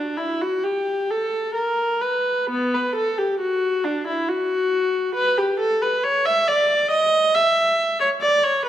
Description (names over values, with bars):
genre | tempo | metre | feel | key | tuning
classical, baroque-style suite movement for unaccompanied viola | 61-69 BPM | 3/4 | rubato | B minor | A4 = 441 Hz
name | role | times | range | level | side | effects
warm viola | solo | 0.0-8.7 s | B3 to E5 | -18 LUFS | equal | none
room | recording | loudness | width
wet recital hall reverb, RT60 1.6 s | none | -18 LUFS | side -11 dB against mid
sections
0.0-8.7 A section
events
none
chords
none